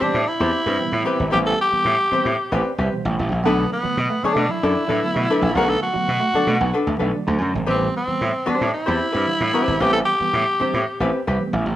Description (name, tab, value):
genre	funk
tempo	113 BPM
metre	4/4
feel	straight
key	A dorian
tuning	A4 = 440 Hz
part	growling tenor saxophone	melody	0.0-11.1 s	B3 to A4	-21 LUFS	equal	none
part	archtop guitar, miked and amplified	accompaniment	0.0-11.4 s	C4 to D5	-22 LUFS	left 2 dB	none
part	mellow reed electric piano	stabs	0.0-11.8 s	B2 to D5	-29 LUFS	right 2 dB	fast tremolo
part	gritty slap bass	bass	0.0-11.8 s	G#1 to B2	-23 LUFS	equal	overdrive
part	electric guitar at the edge of break-up	riff	3.4-7.6 s	F#3 to B3	-28 LUFS	right 4 dB	phaser
room	moderate stone room reverb, RT60 1.0 s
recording	band playing live in one room, cassette tape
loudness	-18 LUFS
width	side -13 dB against mid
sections	0.0-11.8 A section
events	break 0.0-3.4; reed electric piano fill 2.4-3.4, 6.6-7.7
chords	0.0 Am9; 3.4 Bm7; 7.7 Am9